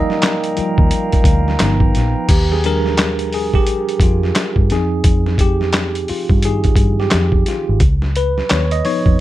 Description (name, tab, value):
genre	R&B, neo-soul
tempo	87 BPM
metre	4/4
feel	swing 61% on 16ths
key	Eb major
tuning	A4 = 441 Hz
part	bell-like tine electric piano	accompaniment	0.0-9.2 s	Eb3 to Eb5	-19 LUFS	equal	medium stereo tremolo
part	glass harmonica	sustained chords	0.0-2.3 s	Bb4 to Bb5	-24 LUFS	equal	none
part	boom bap sampler-style drum kit	drums	0.1-9.2 s	crash cymbal, handclaps, hi-hat, kick drum, snare drum	-16 LUFS	equal	none
part	vintage muted fingered electric bass	bass	0.6-9.2 s	G1 to G2	-17 LUFS	equal	none
room	little or no reverb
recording	none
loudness	-13 LUFS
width	side -15 dB against mid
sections	0.0-2.3 A section; 2.3-9.2 B section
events	tine electric piano solo 0.0-2.3, 2.3-9.2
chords	0.0 Ebmaj9; 1.6 G7alt; 2.3 Ebmaj9; 4.7 Fm9; 7.8 Db9